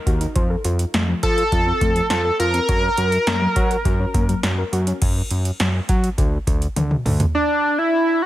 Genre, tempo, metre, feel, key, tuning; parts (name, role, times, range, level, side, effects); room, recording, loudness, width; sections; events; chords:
synth-pop; 103 BPM; 4/4; straight; A4 = 441 Hz
soft round pluck; arpeggios; 0.1-4.9 s; F3 to Db5; -27 LUFS; left 2 dB; chorus, tape echo
fat analog bass; bass; 0.1-7.3 s; D2 to Gb3; -21 LUFS; equal
electro analog drum machine; drums; 0.1-7.3 s; crash cymbal, hi-hat, kick drum, snare drum, toms; -22 LUFS; equal
octave-doubled lead; melody; 1.2-8.3 s; D4 to Bb4; -20 LUFS; equal; chorus, tape echo
light reverb, digital ambience; -17 LUFS; side -14 dB against mid
0.0-5.0 A section; 5.0-7.3 B section
drum fill 6.8-7.3
0.4 F; 2.7 Gb; 5.0 N.C.